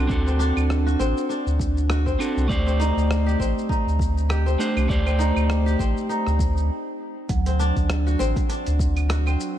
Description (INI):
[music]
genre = organic downtempo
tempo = 100 BPM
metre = 4/4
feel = swing 56% on 16ths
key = unclear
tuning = A4 = 440 Hz
[part]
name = electric guitar at the edge of break-up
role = accompaniment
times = 0.0-6.7 s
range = A3 to D5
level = -26 LUFS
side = right 2 dB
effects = sidechain pumping, tape echo
[part]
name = kora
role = arpeggios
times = 0.0-9.6 s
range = C4 to G4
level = -27 LUFS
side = left 1 dB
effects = low-pass filter, tape echo
[part]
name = warm sub bass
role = bass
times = 0.0-9.4 s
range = A1 to D2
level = -21 LUFS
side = equal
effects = none
[part]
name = dusty soul sampler-style drum kit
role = drums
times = 0.1-9.5 s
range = claves, hi-hat, rim click, shaker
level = -33 LUFS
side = right 1 dB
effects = none
[part]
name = electronic kick drum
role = drums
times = 0.1-8.9 s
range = none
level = -25 LUFS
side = equal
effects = none
[part]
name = quartz singing bowl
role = texture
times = 7.3-9.6 s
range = F#3 to F#5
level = -33 LUFS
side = right 10 dB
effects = none
[sound]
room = digital ambience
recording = none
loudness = -20 LUFS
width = side -11 dB against mid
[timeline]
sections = 0.0-7.3 A section; 7.3-9.6 A section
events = stop 6.7-7.3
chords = 0.0 D7; 2.5 Eb6; 7.3 D7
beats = | 0.10 0.69 1.29 1.90 | 2.50 3.10 3.69 4.29 | 4.89 5.50 6.09 6.70 | 7.29 7.89 8.49 9.10